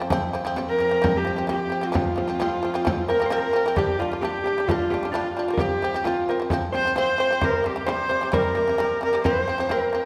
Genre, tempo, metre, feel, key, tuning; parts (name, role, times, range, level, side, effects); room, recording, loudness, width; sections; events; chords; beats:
mongolian traditional, Mongolian folk; 131 BPM; 4/4; straight; F zhi mode; A4 = 443 Hz
clear horsehead fiddle; melody; 0.0-10.1 s; F4 to C5; -26 LUFS; equal
shamisen; arpeggios; 0.0-10.0 s; C3 to D4; -30 LUFS; equal
rich cello; drone; 0.0-3.8 s; F2; -36 LUFS; equal
frame drum; percussion; 0.1-10.0 s; -31 LUFS; equal
hollow-body jazz guitar; second line; 3.1-10.1 s; F4 to C5; -30 LUFS; equal
wet concert hall reverb, RT60 2.0 s; -23 LUFS; mono
0.0-3.8 A section; 3.8-10.1 B section
0.0 F5; 3.8 G5; 5.6 F5; 7.4 C5; 9.2 F5
| 0.11 0.57 1.03 1.49 | 1.94 2.40 2.86 3.31 | 3.77 4.23 4.68 5.14 | 5.60 6.05 6.51 6.96 | 7.42 7.88 8.33 8.79 | 9.25 9.70